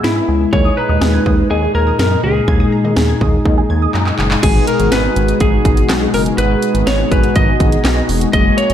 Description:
synth-pop; 123 BPM; 4/4; straight; G# minor; A4 = 441 Hz
lightly driven lead guitar; melody; 0.0-8.7 s; E4 to D#5; -18 LUFS; equal; shimmer reverb
mellow synth brass; accompaniment; 0.0-8.7 s; G#3 to G#4; -19 LUFS; left 1 dB; chorus, shimmer reverb
warm analog pad; sustained chords; 0.0-8.7 s; A#2 to F#4; -21 LUFS; left 2 dB; chorus, phaser, shimmer reverb
resonant blip pluck; arpeggios; 0.0-4.3 s; G#4 to G#6; -25 LUFS; right 1 dB; phaser, ping-pong delay, shimmer reverb
chorused synth bass; bass; 0.0-8.7 s; E1 to G#2; -17 LUFS; equal
house drum kit; drums; 0.0-8.7 s; crash cymbal, handclaps, hi-hat, kick drum, snare drum; -16 LUFS; equal; overdrive
moderate recital hall reverb, RT60 1.5 s, digital ambience; -11 LUFS; side -10 dB against mid
0.0-4.4 A section; 4.4-8.7 B section
drum fill 3.9-4.4
0.0 E; 0.5 D#sus4; 4.4 G#m7

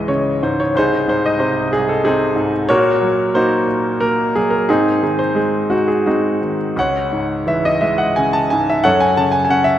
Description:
classical, lyrical solo piano; 83-94 BPM; 3/4; rubato; C# harmonic minor; A4 = 441 Hz
bright grand piano; solo; 0.0-9.8 s; B#1 to A5; -14 LUFS; equal
wet concert hall reverb, RT60 2.5 s; -14 LUFS; side -11 dB against mid
0.0-9.8 A section
0.0 C#m; 0.7 G#/B#; 2.7 D#m/A#; 4.7 G#; 6.8 C#m; 8.8 F#m

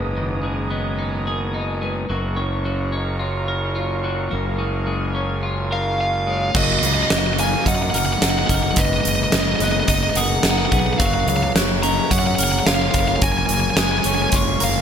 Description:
post-rock; 108 BPM; 4/4; straight; F# major; A4 = 440 Hz
muted studio string section; sustained chords; 0.0-14.8 s; F#3 to D#6; -32 LUFS; right 1 dB
twelve-string electric guitar; arpeggios; 0.0-14.8 s; G#2 to A#4; -27 LUFS; left 3 dB; wide subtle chorus, analog delay
vibraphone with medium hard mallets; arpeggios; 0.0-14.8 s; A#4 to E#5; -31 LUFS; right 6 dB; analog delay
fuzz fingered electric bass; bass; 0.0-14.8 s; F#1 to F#2; -23 LUFS; equal; overdrive
smooth overdriven lead guitar; melody; 5.7-14.8 s; D#5 to C#6; -22 LUFS; equal; analog delay
huge arena drum kit; drums; 6.5-14.7 s; crash cymbal, hi-hat, kick drum, snare drum; -19 LUFS; equal
light reverb, studio ambience; -17 LUFS; side -8 dB against mid
0.0-6.5 A section; 6.5-14.8 B section
0.0 G#madd9/F#; 2.1 F#maj7; 4.3 A#m7/F#; 6.5 D#m/F#; 8.8 G#madd9/F#; 11.0 F#maj7; 13.2 A#m7/F#

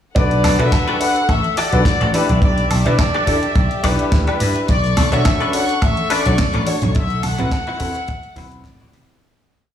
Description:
nu-disco, nu disco; 106 BPM; 4/4; swing 54% on 16ths; A4 = 440 Hz
warm grand piano; accompaniment; 0.1-9.2 s; C4 to B5; -23 LUFS; equal; sidechain pumping, digital delay
bright trumpet section; melody; 0.2-8.9 s; B4 to F#5; -22 LUFS; left 1 dB; dub echo
dark chamber string section; sustained chords; 0.2-9.2 s; G4 to C#6; -28 LUFS; left 2 dB; sidechain pumping
vintage slap bass; bass; 0.2-9.0 s; A1 to B2; -18 LUFS; equal
house drum kit; drums; 0.2-9.2 s; hi-hat, snare drum, woodblock; -25 LUFS; equal; small room ambience
kick drum; drums; 0.2-8.8 s; -18 LUFS; equal; small room ambience
direct-recorded clean electric guitar; riff; 0.6-9.2 s; C4 to F#5; -24 LUFS; left 3 dB; ensemble chorus, digital delay
maracas and congas; percussion; 4.7-9.2 s; -28 LUFS; right 4 dB
light reverb, small room ambience; played on a big sound system in a bare room, stone room reverb; -14 LUFS; side -10 dB against mid
0.2-9.2 drop
drop 0.2-9.2; fade-out 6.2-9.2; clean electric guitar fill 8.1-9.2
0.2 Gmaj9/B; 2.1 A9sus4/B; 4.7 Bm9; 7.0 D13/B (rootless)

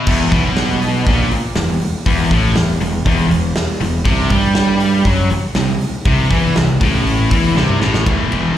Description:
hard rock; 120 BPM; 4/4; straight; E minor; A4 = 440 Hz
scooped high-gain guitar; riff; 0.0-8.6 s; E2 to G3; -20 LUFS; left 6 dB; distortion, slapback echo
sludgy distorted guitar; riff; 0.0-8.6 s; E2 to G3; -20 LUFS; right 5 dB; overdrive, slapback echo
distorted electric guitar; riff; 0.1-8.1 s; E2 to G3; -22 LUFS; equal; overdrive
fuzz fingered electric bass; bass; 0.1-8.6 s; E1 to G2; -19 LUFS; equal; overdrive
big rock drum kit; drums; 0.1-8.4 s; crash cymbal, hi-hat, kick drum, ride cymbal, snare drum, toms; -18 LUFS; equal
light reverb; live gig heard through the venue's PA, recital hall reverb; -13 LUFS; side -11 dB against mid
0.1-8.1 A section
drum fill 7.6-8.1
0.1 E5; 4.1 C5; 8.1 E5

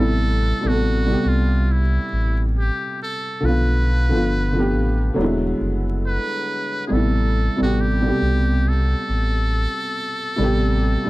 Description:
hip hop; 69 BPM; 4/4; swing 58% on 16ths; A dorian; A4 = 440 Hz
trumpet with metal mute; melody; 0.0-11.1 s; E4 to B4; -26 LUFS; equal
dark upright piano; accompaniment; 0.0-11.1 s; B2 to A4; -22 LUFS; equal
sub bass with octave; bass; 0.0-11.1 s; E1 to C2; -20 LUFS; equal
light reverb; dark, warm production, vinyl crackle; -18 LUFS; side -19 dB against mid
0.0-11.1 A section
0.0 Am7; 3.4 Bm7b5; 5.2 E7; 6.9 Am7

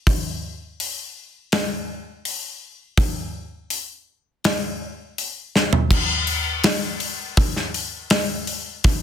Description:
rock; 82 BPM; 4/4; straight
big rock drum kit; drums; 0.1-9.0 s; crash cymbal, hi-hat, kick drum, snare drum, toms; -20 LUFS; equal
moderate studio reverb, RT60 0.5 s; dense, heavily limited modern master; -21 LUFS; side -9 dB against mid
0.0-5.9 A section; 5.9-9.0 B section
half time 0.0-5.9; drum fill 5.6-5.9

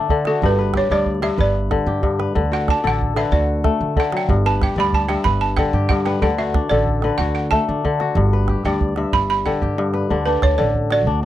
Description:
west african traditional, West African string and xylophone music; 124 BPM (dotted quarters); 12/8; straight; D major; A4 = 440 Hz
kora; arpeggios; 0.0-11.2 s; G2 to E5; -20 LUFS; left 4 dB
upright bass; bass; 0.0-11.2 s; G1 to D3; -22 LUFS; equal
calabash; percussion; 0.1-11.1 s; -22 LUFS; right 2 dB
balafon; melody; 0.3-11.2 s; A4 to B5; -22 LUFS; right 4 dB
little or no reverb; dry, close 1970s-style studio recording; -16 LUFS; side -13 dB against mid
0.0-10.1 A section; 10.1-11.2 B section
balafon solo 0.0-10.1; drum fill 9.5-10.1
0.4 G; 2.4 D; 4.3 G; 6.2 D; 8.2 G; 10.1 D

